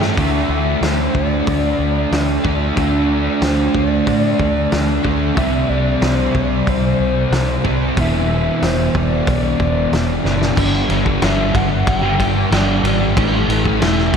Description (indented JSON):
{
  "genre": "rock, shoegaze and dream pop",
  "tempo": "92 BPM",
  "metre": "4/4",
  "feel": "straight",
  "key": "unclear",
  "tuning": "A4 = 440 Hz",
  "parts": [
    { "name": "pure sine lead", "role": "melody", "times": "0.0-14.2 s", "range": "C5 to G5", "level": "-24 LUFS", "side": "left 2 dB", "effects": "chorus, analog delay" },
    { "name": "fuzz guitar", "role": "riff", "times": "0.0-14.2 s", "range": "E2 to D4", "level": "-17 LUFS", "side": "equal", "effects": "distortion, analog chorus" },
    { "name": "vintage muted fingered electric bass", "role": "bass", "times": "0.0-14.2 s", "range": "E1 to A2", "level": "-20 LUFS", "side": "equal", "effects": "none" },
    { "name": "loose indie drum kit", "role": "drums", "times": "0.0-14.2 s", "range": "crash cymbal, hi-hat, kick drum, ride cymbal, snare drum", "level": "-22 LUFS", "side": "equal", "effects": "none" }
  ],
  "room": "wet huge ambient reverb, RT60 7.5 s",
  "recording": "dreamy mix soaked in reverb",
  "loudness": "-14 LUFS",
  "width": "side -7 dB against mid",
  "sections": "0.2-10.6 A section; 10.6-14.2 B section",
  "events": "drum fill 0.0, 10.2-10.6",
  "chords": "0.2 D5; 5.4 C5; 8.0 E5; 10.6 G5; 13.2 A5"
}